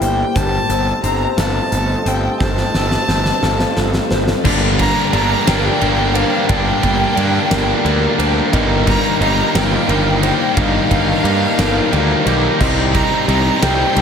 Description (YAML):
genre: post-rock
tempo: 59 BPM (dotted quarters)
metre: 6/8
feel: straight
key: G minor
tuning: A4 = 440 Hz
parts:
  - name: clear violin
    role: melody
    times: 0.0-14.0 s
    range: F5 to Bb5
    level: -21 LUFS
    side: equal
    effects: ping-pong delay
  - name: dark analog pad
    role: sustained chords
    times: 0.0-14.0 s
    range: G3 to A5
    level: -27 LUFS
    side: right 1 dB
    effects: none
  - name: electric guitar through a small old amp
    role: arpeggios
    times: 0.0-14.0 s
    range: G2 to A4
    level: -24 LUFS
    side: left 2 dB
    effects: lush chorus, ping-pong delay
  - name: electric guitar through a small old amp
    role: arpeggios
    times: 0.0-14.0 s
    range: A4 to Eb5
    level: -27 LUFS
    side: right 2 dB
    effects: ping-pong delay
  - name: fuzz picked electric bass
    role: bass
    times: 0.0-14.0 s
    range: G1 to G2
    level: -19 LUFS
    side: right 1 dB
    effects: overdrive
  - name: huge arena drum kit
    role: drums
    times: 0.0-14.0 s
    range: crash cymbal, hi-hat, kick drum, ride cymbal, snare drum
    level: -21 LUFS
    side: equal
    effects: none
  - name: distorted electric guitar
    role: riff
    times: 4.4-14.0 s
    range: G2 to Eb4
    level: -19 LUFS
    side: left 10 dB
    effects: overdrive
  - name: distorted electric guitar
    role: riff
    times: 4.4-14.0 s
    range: G2 to Eb4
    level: -20 LUFS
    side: right 11 dB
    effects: overdrive
room: moderate cathedral reverb, RT60 4.4 s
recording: dreamy mix soaked in reverb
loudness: -13 LUFS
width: side -7 dB against mid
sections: 0.0-4.4 A section; 4.4-14.0 B section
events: drum fill 2.4-4.4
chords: 0.4 F7/G; 4.4 Gm; 8.5 Ebadd9/G; 12.6 Cm